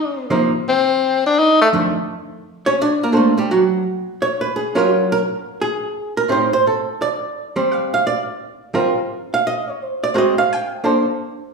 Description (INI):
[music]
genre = jazz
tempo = 171 BPM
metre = 4/4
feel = swing 64% on 8ths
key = unclear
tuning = A4 = 443 Hz
[part]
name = breathy tenor saxophone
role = melody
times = 0.0-1.7 s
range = A3 to Eb4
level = -15 LUFS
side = left 3 dB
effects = none
[part]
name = archtop guitar, miked and amplified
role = accompaniment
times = 0.3-11.1 s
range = F2 to G5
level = -17 LUFS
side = right 2 dB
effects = none
[sound]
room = wet large studio reverb, RT60 1.3 s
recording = band playing live in one room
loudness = -16 LUFS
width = side -4 dB against mid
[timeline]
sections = 0.0-2.1 A section; 2.1-11.5 A section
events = tenor saxophone solo 0.0-2.1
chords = 0.0 Cm11; 0.7 N.C.; 1.4 F6; 2.1 Bbmaj9; 3.5 N.C.; 4.2 Gbmaj7; 6.3 Am7b5; 7.0 Gmadd11; 9.1 N.C.; 9.8 Ab7; 10.5 Bbmaj9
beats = 0.32 | 0.67 1.02 1.37 1.72 | 2.07 2.42 2.77 3.12 | 3.47 3.83 4.18 4.53 | 4.88 5.23 5.58 5.93 | 6.28 6.63 6.98 7.33 | 7.68 8.04 8.39 8.74 | 9.09 9.44 9.79 10.14 | 10.49 10.84